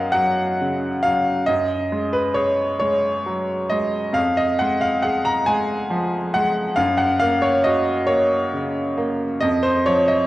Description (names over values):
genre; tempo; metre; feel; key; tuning
classical, romantic nocturne for solo piano; 45 BPM (dotted quarters); 12/8; rubato; F# major; A4 = 443 Hz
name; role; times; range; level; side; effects
bright baby grand piano; solo; 0.0-10.3 s; F2 to Bb5; -18 LUFS; equal; none
room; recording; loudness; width
wet recital hall reverb, RT60 1.6 s; worn, warbling old tape, cassette tape, warbly pitch drift; -18 LUFS; side -16 dB against mid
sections
0.0-10.3 A section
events
none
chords
0.0 F#; 1.5 B69/F#; 4.2 Fmadd11; 6.8 F#; 9.4 F7(no3)